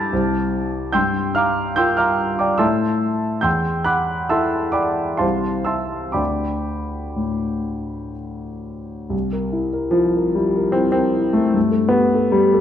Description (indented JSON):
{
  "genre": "classical, impressionist solo piano",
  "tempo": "60-77 BPM",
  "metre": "3/4",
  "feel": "rubato",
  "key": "unclear",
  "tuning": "A4 = 440 Hz",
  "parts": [
    { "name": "warm grand piano", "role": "solo", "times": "0.0-12.6 s", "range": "C2 to B6", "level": "-18 LUFS", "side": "equal", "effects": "none" }
  ],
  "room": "wet recital hall reverb, RT60 1.6 s",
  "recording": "dark, warm production",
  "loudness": "-17 LUFS",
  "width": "side -10 dB against mid",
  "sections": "0.0-9.1 A section; 9.1-12.6 B section",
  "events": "none",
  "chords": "0.1 Cadd9; 1.0 Gm7; 2.6 A5; 3.4 Em11; 5.2 C; 6.2 Dsus4; 9.1 C7; 11.6 Gsus2"
}